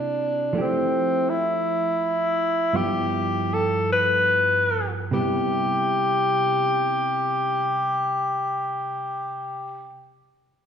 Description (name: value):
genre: jazz ballad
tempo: 47-58 BPM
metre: 4/4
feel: swing 67% on 8ths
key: C major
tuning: A4 = 440 Hz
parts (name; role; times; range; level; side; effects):
- breathy tenor saxophone; melody; 0.0-9.9 s; C4 to B4; -22 LUFS; left 1 dB; none
- hollow-body jazz guitar; accompaniment; 0.0-9.9 s; G2 to A4; -28 LUFS; right 2 dB; none
room: wet recital hall reverb, RT60 1.4 s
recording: recorded in a church or concert hall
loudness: -21 LUFS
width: side -8 dB against mid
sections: 0.6-5.1 A section; 5.1-10.2 B section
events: slowing down 0.0-5.1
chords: 0.0 C13; 0.6 Fmaj9; 2.7 G6; 5.1 Cmaj7